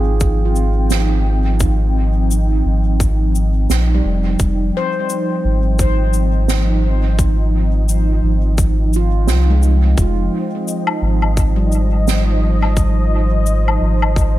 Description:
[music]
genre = ambient dub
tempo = 86 BPM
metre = 4/4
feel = swing 58% on 16ths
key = F minor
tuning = A4 = 441 Hz
[part]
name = warm analog pad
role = sustained chords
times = 0.0-14.4 s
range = F3 to G5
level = -22 LUFS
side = right 1 dB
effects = chorus
[part]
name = handpan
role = arpeggios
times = 0.0-14.4 s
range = G3 to C5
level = -25 LUFS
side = equal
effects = tape echo
[part]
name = soft dub sub bass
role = bass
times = 0.0-14.4 s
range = F1 to C2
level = -15 LUFS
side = equal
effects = none
[part]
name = cabasa, snare drum and woodblock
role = drums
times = 0.2-14.3 s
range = none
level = -24 LUFS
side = right 1 dB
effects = dub echo
[part]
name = electronic kick drum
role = drums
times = 0.2-14.3 s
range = none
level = -18 LUFS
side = equal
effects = none
[sound]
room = small room reverb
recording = none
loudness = -13 LUFS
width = side -15 dB against mid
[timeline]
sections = 0.0-14.4 A section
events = none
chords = 0.0 Fm7; 10.0 Ab/F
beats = 0.21 0.91 | 1.60 2.30 3.00 3.70 | 4.39 5.09 5.79 6.49 | 7.19 7.88 8.58 9.28 | 9.98 10.67 11.37 12.07 | 12.77 13.46 14.16

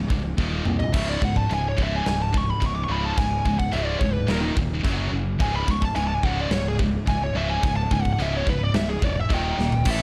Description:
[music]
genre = heavy metal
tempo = 108 BPM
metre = 4/4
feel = straight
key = unclear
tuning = A4 = 440 Hz
[part]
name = heavy high-gain guitar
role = riff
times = 0.0-10.0 s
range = C#2 to F#3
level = -32 LUFS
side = equal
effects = distortion
[part]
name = heavy high-gain guitar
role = riff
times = 0.0-10.0 s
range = C#2 to A4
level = -32 LUFS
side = equal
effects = distortion
[part]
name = modern bright picked electric bass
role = bass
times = 0.0-10.0 s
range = C#1 to B#1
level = -30 LUFS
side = equal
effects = none
[part]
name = big rock drum kit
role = drums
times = 0.1-10.0 s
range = china cymbal, crash cymbal, kick drum, snare drum, toms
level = -29 LUFS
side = equal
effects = none
[part]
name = high-gain lead guitar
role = melody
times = 0.8-10.0 s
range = D#4 to D6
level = -30 LUFS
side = equal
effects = distortion
[sound]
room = little or no reverb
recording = dark, warm production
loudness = -23 LUFS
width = mono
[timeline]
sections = 0.0-9.9 A section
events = lead electric guitar solo 0.0-9.9; drum fill 0.4-0.9, 9.6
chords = 0.4 D#5; 0.9 C#5; 4.3 D#5; 4.8 F#5; 5.4 C#5; 9.3 D#5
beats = 0.39 | 0.94 1.50 2.06 2.62 | 3.18 3.74 4.29 4.85 | 5.41 5.96 6.52 7.08 | 7.63 8.19 8.74 9.30 | 9.85

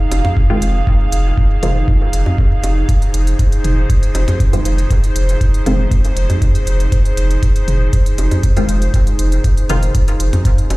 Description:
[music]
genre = dub techno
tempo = 119 BPM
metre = 4/4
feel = straight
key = F minor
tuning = A4 = 439 Hz
[part]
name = airy breathy pad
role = sustained chords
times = 0.0-10.8 s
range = Eb4 to F5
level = -23 LUFS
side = right 1 dB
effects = chorus, vintage 12-bit sampler grit, sidechain pumping
[part]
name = filtered dub chord stab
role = stabs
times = 0.0-10.8 s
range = Eb3 to F4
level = -24 LUFS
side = left 1 dB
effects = chorus, phaser, sidechain pumping, dub echo
[part]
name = warm sub bass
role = bass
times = 0.1-10.8 s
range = F1 to F2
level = -15 LUFS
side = equal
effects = sidechain pumping
[part]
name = electronic hi-hat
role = drums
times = 0.1-10.8 s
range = none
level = -29 LUFS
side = right 1 dB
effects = none
[part]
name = electronic bongos and toms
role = percussion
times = 0.1-10.8 s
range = none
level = -29 LUFS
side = equal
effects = none
[part]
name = electronic kick drum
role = drums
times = 0.4-10.6 s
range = none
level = -14 LUFS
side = equal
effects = overdrive
[sound]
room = little or no reverb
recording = played on a big sound system in a bare room, large studio reverb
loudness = -12 LUFS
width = side -20 dB against mid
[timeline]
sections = 0.0-10.8 A section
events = none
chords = 0.0 Fm7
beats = 0.37 | 0.87 1.38 1.88 2.38 | 2.89 3.39 3.90 4.40 | 4.91 5.41 5.92 6.42 | 6.92 7.43 7.93 8.44 | 8.94 9.44 9.95 10.45

